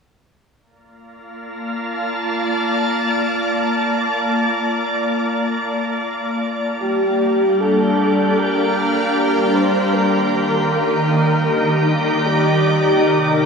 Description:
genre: ambient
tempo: free time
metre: none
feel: none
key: Bb major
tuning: A4 = 435 Hz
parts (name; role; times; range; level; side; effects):
- soft additive organ-like pad; sustained chords; 1.3-13.5 s; C3 to A5; -18 LUFS; equal; ensemble chorus, built-in reverb
- organ-like drone; drone; 1.4-13.5 s; Bb3 to D5; -26 LUFS; left 1 dB; ensemble chorus, built-in reverb
- breathy flute-like synth lead; melody; 6.8-13.5 s; G4 to C5; -19 LUFS; equal; ensemble chorus, tape echo
- drifting glass-harmonics texture; texture; 13.3-13.5 s; D6; -35 LUFS; left 1 dB; none
room: wet shimmer reverb, RT60 7.3 s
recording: none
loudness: -16 LUFS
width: side -5 dB against mid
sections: 0.6-13.0 A section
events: none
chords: 0.6 Bbmaj7; 6.8 Gm7; 9.9 Ebmaj7

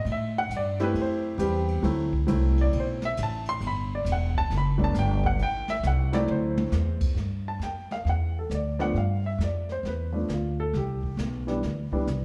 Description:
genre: jazz piano trio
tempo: 135 BPM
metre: 4/4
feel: swing 65% on 8ths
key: G major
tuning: A4 = 440 Hz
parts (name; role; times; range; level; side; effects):
- warm baby grand piano; melody; 0.0-12.1 s; E3 to C6; -31 LUFS; equal; slapback echo
- upright bass; bass; 0.0-12.2 s; E1 to A2; -30 LUFS; equal; none
- jazz brush drum kit; drums; 0.1-12.2 s; brushed snare drum, crash cymbal, hi-hat, kick drum, ride cymbal, snare drum, toms; -36 LUFS; equal; none
room: light reverb, studio reverb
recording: live gig heard through the venue's PA, club ambience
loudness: -27 LUFS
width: mono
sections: 0.0-7.2 A section; 7.2-12.2 B section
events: grand piano solo 0.0-7.2; drum fill 5.8-6.7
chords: 0.1 Am7; 1.8 D7; 3.6 Gmaj7; 5.4 Am; 6.3 D9; 7.2 Gmaj7(no3); 9.0 G7; 10.7 Cmaj7sus2

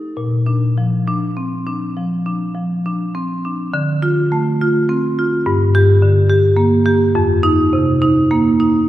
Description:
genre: classical, contemporary piece for solo marimba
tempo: 68 BPM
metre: 4/4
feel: rubato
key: Bb major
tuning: A4 = 444 Hz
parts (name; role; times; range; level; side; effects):
- marimba with medium hard mallets; solo; 0.0-8.9 s; F2 to G4; -14 LUFS; equal; none
room: wet concert hall reverb, RT60 2.1 s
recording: heard from further back in the room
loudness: -14 LUFS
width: side -13 dB against mid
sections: 0.2-8.9 A section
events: none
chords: 0.2 Bbadd9; 3.7 Dm7; 5.5 Gm; 7.1 F7sus4

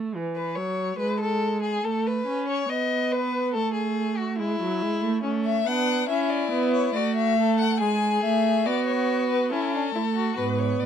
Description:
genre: classical, baroque-style fugue for string quartet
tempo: 70 BPM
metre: 3/4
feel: straight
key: A major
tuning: A4 = 445 Hz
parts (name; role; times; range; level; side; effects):
- warm viola; accompaniment; 0.0-10.9 s; E3 to C#4; -25 LUFS; right 4 dB; none
- rich violin; second line; 0.4-10.4 s; C#4 to D#5; -28 LUFS; left 3 dB; none
- rich violin; melody; 5.5-10.9 s; A4 to G#5; -26 LUFS; left 9 dB; none
- rich cello; bass; 10.4-10.9 s; G#2 to A2; -27 LUFS; right 5 dB; none
room: light reverb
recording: dark, warm production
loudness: -22 LUFS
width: side -8 dB against mid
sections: 0.0-10.4 A section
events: none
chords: 0.1 E; 1.8 Aadd9; 2.7 B7; 4.4 E; 5.2 A; 7.0 Dadd9/A; 7.8 E/G#; 9.5 A/C#

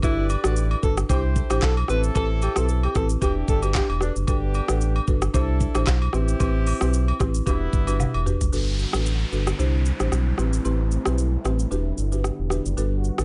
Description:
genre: afrobeats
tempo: 113 BPM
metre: 4/4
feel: swing 55% on 16ths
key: G major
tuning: A4 = 440 Hz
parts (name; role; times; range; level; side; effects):
- breathy alto saxophone; melody; 0.0-4.1 s; D4 to B4; -31 LUFS; equal; digital delay
- warm horn section; second line; 0.0-8.2 s; G3 to D5; -35 LUFS; equal; none
- buzzing marimba with medium mallets; accompaniment; 0.0-13.2 s; C4 to F#5; -32 LUFS; equal; none
- sub bass with octave; bass; 0.0-13.2 s; E1 to C2; -25 LUFS; equal; none
- afro-pop drum kit; drums; 0.0-13.2 s; handclaps, hi-hat, kick drum, rim click, shaker, toms; -28 LUFS; equal; none
- agogo bells and woodblock; percussion; 0.0-8.3 s; none; -36 LUFS; equal; none
- warm analog pad; sustained chords; 8.5-13.2 s; D3 to F#4; -35 LUFS; equal; chorus
- downlifter; sound effects; 8.5-12.8 s; none; -38 LUFS; equal; none
room: light reverb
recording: nothing above 10.6 kHz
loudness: -23 LUFS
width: mono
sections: 0.0-8.5 A section; 8.5-13.2 B section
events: drum fill 8.0-8.5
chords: 0.0 Gmaj7; 1.1 Cadd9; 1.9 Am7; 3.2 Em7; 4.3 Gmaj7; 5.3 Cadd9; 6.1 Am7; 7.5 Em7; 8.5 Gmaj7; 9.6 Cadd9; 10.4 Am7; 11.7 Em7

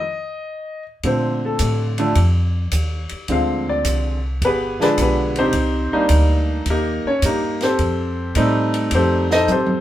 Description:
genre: jazz piano trio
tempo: 107 BPM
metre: 4/4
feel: swing 69% on 8ths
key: Bb major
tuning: A4 = 440 Hz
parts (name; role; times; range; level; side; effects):
- warm concert grand piano; melody; 0.0-9.8 s; D3 to F5; -19 LUFS; equal; none
- upright bass; bass; 1.0-9.8 s; G1 to Bb2; -20 LUFS; equal; none
- compact cocktail drum kit; drums; 1.0-9.8 s; hi-hat, kick drum, ride cymbal, snare drum, toms; -27 LUFS; equal; none
room: moderate studio reverb, RT60 0.6 s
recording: band playing live in one room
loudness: -16 LUFS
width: side -13 dB against mid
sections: 0.0-1.0 A section; 1.0-9.8 B section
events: break 0.0-1.0; grand piano solo 1.0-9.8; drum fill 9.5-9.8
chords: 0.0 N.C.; 1.0 Bbmaj9; 3.3 Dm7b5; 4.4 G7b9; 5.5 Cm7; 7.8 F9

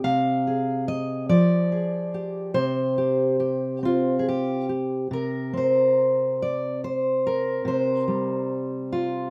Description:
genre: folk, solo fingerstyle acoustic guitar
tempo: 48 BPM (dotted quarters)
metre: 6/8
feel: rubato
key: unclear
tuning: A4 = 440 Hz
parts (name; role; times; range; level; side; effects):
- fingerpicked steel-string acoustic guitar; solo; 0.0-9.3 s; C3 to F5; -24 LUFS; equal; none
room: moderate studio reverb, RT60 0.5 s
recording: none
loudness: -24 LUFS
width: mono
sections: 0.0-5.1 A section; 5.1-9.3 B section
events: none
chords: 0.0 Fmadd9/C; 2.6 C5

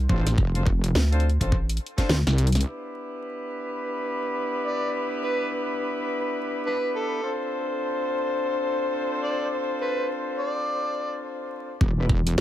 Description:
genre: glitch hop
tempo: 105 BPM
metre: 4/4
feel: swing 60% on 16ths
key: E phrygian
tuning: A4 = 442 Hz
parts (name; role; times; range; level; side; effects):
- rubbery square bass; bass; 0.0-1.8 s; A1 to D2; -22 LUFS; equal; none
- warm horn section; stabs; 0.1-12.1 s; B3 to C5; -28 LUFS; left 1 dB; sidechain pumping, dub echo
- wobble bass; bass; 0.1-2.6, 11.8-12.4 s; E1 to D2; -22 LUFS; equal; chorus, tube saturation
- electronic kick drum; drums; 0.1-2.1, 11.8-12.2 s; none; -23 LUFS; equal; none
- drum and bass drum kit; drums; 0.3-2.7, 12.3-12.4 s; hi-hat, snare drum; -26 LUFS; equal; none
- overdriven harmonica; melody; 4.7-11.2 s; D4 to D5; -31 LUFS; right 1 dB; dub echo
room: light reverb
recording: vinyl crackle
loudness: -23 LUFS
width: side -12 dB against mid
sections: 0.0-2.7 A section; 2.7-11.8 B section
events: drum fill 2.4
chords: 0.0 Dm7; 2.7 Em7; 7.2 Dm7; 11.8 Em7

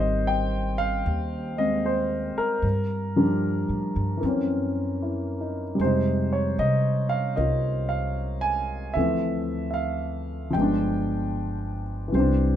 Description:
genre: jazz ballad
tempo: 76 BPM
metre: 4/4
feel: swing 66% on 8ths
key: unclear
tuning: A4 = 440 Hz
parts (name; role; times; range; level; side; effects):
- warm grand piano; accompaniment; 0.0-12.6 s; C3 to Ab5; -24 LUFS; equal; none
- upright bass; bass; 0.0-12.6 s; G1 to C3; -28 LUFS; equal; none
room: moderate studio reverb, RT60 0.6 s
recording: minimal, uncompressed stereo recording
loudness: -23 LUFS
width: side -10 dB against mid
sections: 0.0-12.6 A section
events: none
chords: 0.0 Abmaj9; 2.6 Gm9; 4.2 Gb7#11; 5.8 Fm9; 9.0 Dm9; 10.5 G7b9

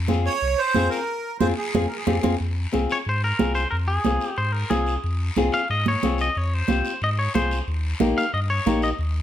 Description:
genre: latin, cumbia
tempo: 182 BPM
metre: 4/4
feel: straight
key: F minor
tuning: A4 = 440 Hz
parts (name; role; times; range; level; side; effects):
- warm sub bass; bass; 0.0-9.2 s; Bb1 to Ab2; -25 LUFS; equal; none
- flamenco guitar; accompaniment; 0.1-8.9 s; Bb3 to Ab4; -25 LUFS; left 4 dB; none
- congas; percussion; 0.1-8.8 s; none; -25 LUFS; right 5 dB; none
- guiro; percussion; 0.1-9.2 s; none; -36 LUFS; left 4 dB; none
- accordion; second line; 0.3-2.2 s; G4 to Db5; -24 LUFS; right 4 dB; light tremolo tuning, slapback echo
- twangy electric guitar; melody; 2.9-8.9 s; Ab4 to F5; -25 LUFS; left 1 dB; spring reverb, slapback echo
room: light reverb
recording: none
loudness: -20 LUFS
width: side -11 dB against mid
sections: 0.0-2.4 A section; 2.4-9.2 B section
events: accordion solo 0.0-2.4; band accent 1.1-2.4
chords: 0.0 Fm; 7.7 Eb

